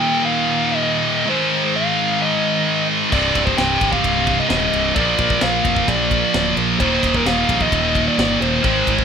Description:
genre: heavy metal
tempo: 130 BPM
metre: 4/4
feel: straight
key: unclear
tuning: A4 = 443 Hz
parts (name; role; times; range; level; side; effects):
- smooth overdriven lead guitar; melody; 0.0-9.0 s; Bb4 to G5; -22 LUFS; equal; digital delay
- scooped high-gain guitar; riff; 0.0-9.0 s; C2 to Bb3; -17 LUFS; equal; distortion
- modern bright picked electric bass; bass; 3.1-9.0 s; C1 to Bb1; -25 LUFS; equal; none
- tight metal drum kit; drums; 3.1-9.0 s; crash cymbal, kick drum, ride cymbal, snare drum; -24 LUFS; equal; none
room: small room ambience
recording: rough home demo mix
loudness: -15 LUFS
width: side -7 dB against mid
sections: 0.0-9.0 A section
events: none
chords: 0.0 Eb5; 1.3 Ab; 3.1 Cm; 5.0 Bb; 6.8 Eb5

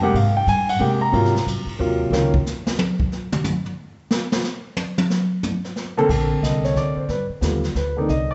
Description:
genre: jazz piano trio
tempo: 181 BPM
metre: 3/4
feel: swing 64% on 8ths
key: unclear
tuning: A4 = 438 Hz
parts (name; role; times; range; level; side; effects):
- warm grand piano; melody; 0.0-2.3, 6.0-8.3 s; C3 to Bb5; -22 LUFS; equal; none
- upright bass; bass; 0.0-2.3, 6.1-8.3 s; Bb1 to C3; -25 LUFS; equal; none
- jazz brush drum kit; drums; 0.1-8.3 s; brushed snare drum, crash cymbal, hi-hat, kick drum, ride cymbal, snare drum, toms; -26 LUFS; equal; none
room: wet recital hall reverb, RT60 1.5 s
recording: recorded in a church or concert hall, nothing above 7.9 kHz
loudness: -21 LUFS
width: mono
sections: 0.0-6.1 A section; 6.1-8.3 B section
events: grand piano solo 0.0-6.1; drum solo 2.1-6.1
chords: 0.1 Abmaj9; 1.1 Ab13; 2.1 N.C.; 5.8 Bbmaj9/D; 6.1 Bbmaj9; 7.1 G

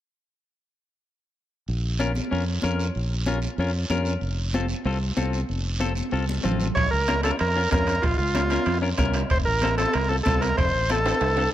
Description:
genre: latin, cumbia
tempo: 189 BPM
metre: 4/4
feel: straight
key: Bb harmonic minor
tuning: A4 = 442 Hz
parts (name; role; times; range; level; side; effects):
- fingered electric bass; bass; 1.7-11.5 s; F1 to F2; -26 LUFS; equal; none
- guiro; percussion; 1.7-11.5 s; none; -37 LUFS; right 5 dB; none
- clean electric guitar; accompaniment; 2.0-11.4 s; C4 to Bb4; -29 LUFS; left 4 dB; spring reverb
- congas; percussion; 2.0-11.2 s; none; -32 LUFS; right 1 dB; none
- overdriven combo organ; melody; 6.7-11.5 s; F4 to Db5; -24 LUFS; equal; none
- bombo; percussion; 6.8-11.4 s; none; -28 LUFS; right 1 dB; none
- timbales; percussion; 6.8-11.4 s; none; -34 LUFS; right 4 dB; none
room: little or no reverb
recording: close, detailed microphones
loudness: -21 LUFS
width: side -12 dB against mid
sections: 1.7-6.8 A section; 6.8-11.5 B section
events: drum fill 6.0-6.8, 11.1-11.5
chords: 1.7 Bbm; 4.2 F; 6.8 Bbm; 9.3 F

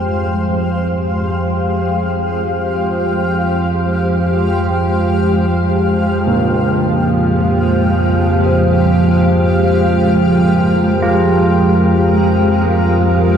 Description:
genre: dark ambient drone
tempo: free time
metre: none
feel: none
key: F minor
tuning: A4 = 440 Hz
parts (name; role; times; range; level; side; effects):
- granular cloud pad; sustained chords; 0.0-13.4 s; Ab3 to F5; -16 LUFS; equal; built-in reverb, shimmer reverb
- analog drone; drone; 0.0-13.4 s; F2 to F3; -15 LUFS; right 1 dB; chorus
- bronze singing bowl; texture; 0.0-13.4 s; C5; -26 LUFS; left 6 dB; shimmer reverb
- carillon bells; arpeggios; 6.3-13.4 s; Bb2 to F4; -19 LUFS; right 3 dB; tape echo
room: wet cathedral reverb, RT60 6.6 s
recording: none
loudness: -12 LUFS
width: side -8 dB against mid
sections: 0.0-13.4 A section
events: fade-in on synth drone 0.0-13.4; fade-in on ambient pad 0.0-13.4; fade-in on church bells 0.0-13.4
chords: 0.0 Fmadd9

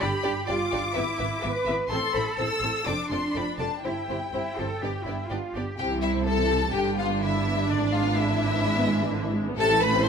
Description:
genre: quick classical-period movement for string orchestra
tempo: 126 BPM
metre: 4/4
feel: straight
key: C major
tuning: A4 = 443 Hz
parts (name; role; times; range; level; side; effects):
- rich studio violin section; melody; 0.0-10.1 s; D5 to E6; -30 LUFS; left 3 dB; none
- warm studio violin section; second line; 0.0-10.1 s; D4 to E5; -30 LUFS; left 4 dB; none
- dark studio viola section; accompaniment; 0.0-10.1 s; C3 to G4; -30 LUFS; right 2 dB; none
- rich studio double bass section; bass; 0.0-10.1 s; F1 to C2; -31 LUFS; right 4 dB; none
- warm studio cello section; bass; 0.0-10.1 s; G2 to B4; -30 LUFS; right 2 dB; none
room: light reverb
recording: none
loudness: -24 LUFS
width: side -6 dB against mid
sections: 0.0-5.8 A section; 5.8-10.1 B section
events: none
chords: 0.0 G; 1.0 E7/G#; 1.9 Am; 2.9 Dm7/F; 3.8 C/G; 4.8 G; 5.8 C; 6.7 G; 7.7 E7/G#; 9.6 Am

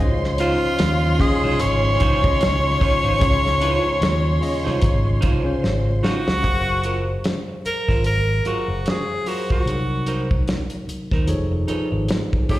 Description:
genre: lush 1970s-style soul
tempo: 74 BPM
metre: 4/4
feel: swing 58% on 16ths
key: Db major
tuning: A4 = 440 Hz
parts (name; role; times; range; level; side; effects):
- warm studio violin section; second line; 0.0-6.4 s; Db5 to C6; -29 LUFS; right 2 dB; plate reverb, slapback echo
- tine electric piano; accompaniment; 0.0-12.6 s; C3 to F5; -27 LUFS; left 2 dB; slapback echo
- warm trombone section; stabs; 0.0-6.0 s; Ab2 to Db4; -29 LUFS; left 2 dB; plate reverb, slapback echo
- fingered electric bass; bass; 0.0-12.1 s; F1 to Eb2; -22 LUFS; equal; none
- warm soul drum kit; drums; 0.2-12.6 s; hi-hat, kick drum, snare drum; -21 LUFS; equal; none
- breathy tenor saxophone; melody; 0.4-12.6 s; F4 to Db5; -22 LUFS; equal; plate reverb, slapback echo
- clean electric guitar; riff; 0.4-12.6 s; Eb4 to C#5; -29 LUFS; right 5 dB; slapback echo
room: light reverb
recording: live gig heard through the venue's PA, recital hall reverb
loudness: -18 LUFS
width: side -15 dB against mid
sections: 0.0-6.4 A section; 6.4-12.6 B section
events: drum fill 5.6-6.4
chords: 0.0 Dbmaj9; 6.4 Gbmaj9#11; 9.7 Cm7b5; 11.3 F7alt

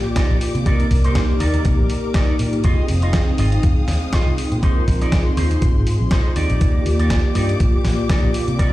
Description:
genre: nu-disco, nu disco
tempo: 121 BPM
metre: 4/4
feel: swing 55% on 16ths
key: unclear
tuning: A4 = 439 Hz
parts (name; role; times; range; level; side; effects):
- warm analog pad; accompaniment; 0.0-8.7 s; Bb3 to G5; -24 LUFS; equal; chorus, cassette tape, ping-pong delay
- rich symphonic string section; sustained chords; 0.0-8.7 s; Ab3 to Eb6; -32 LUFS; left 1 dB; sidechain pumping
- electric guitar with an envelope filter; riff; 0.1-8.7 s; Eb4 to Eb5; -28 LUFS; right 1 dB; wide subtle chorus, ping-pong delay
- dusty soul sampler-style drum kit; drums; 0.2-8.7 s; hi-hat, snare drum; -28 LUFS; equal; none
- electronic kick drum; drums; 0.2-8.7 s; none; -17 LUFS; equal; none
- fingered electric bass with an envelope filter; bass; 0.3-8.7 s; F1 to C3; -20 LUFS; equal; sidechain pumping
room: digital ambience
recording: played on a big sound system in a bare room, stone room reverb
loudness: -15 LUFS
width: side -16 dB against mid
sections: 0.0-8.7 A section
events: none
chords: 0.0 Ebmaj7; 0.7 Cm9; 2.6 Fm7; 4.6 Bb9sus4; 6.4 Ebmaj7

